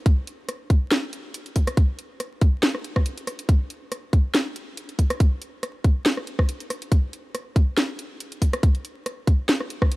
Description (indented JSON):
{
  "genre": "dubstep",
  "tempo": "140 BPM",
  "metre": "4/4",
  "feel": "swing 54% on 16ths, half-time",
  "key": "none",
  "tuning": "none",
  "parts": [
    { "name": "electronic kick drum", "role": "drums", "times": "0.1-9.9 s", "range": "none", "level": "-18 LUFS", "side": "equal", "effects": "overdrive" },
    { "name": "garage drum kit", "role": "drums", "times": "0.1-10.0 s", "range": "hi-hat, rim click, snare drum", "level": "-25 LUFS", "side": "equal", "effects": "overdrive" }
  ],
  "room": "digital ambience",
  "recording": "vinyl crackle",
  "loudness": "-21 LUFS",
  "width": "side -21 dB against mid",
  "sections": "0.0-10.0 A section",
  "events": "none",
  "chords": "none"
}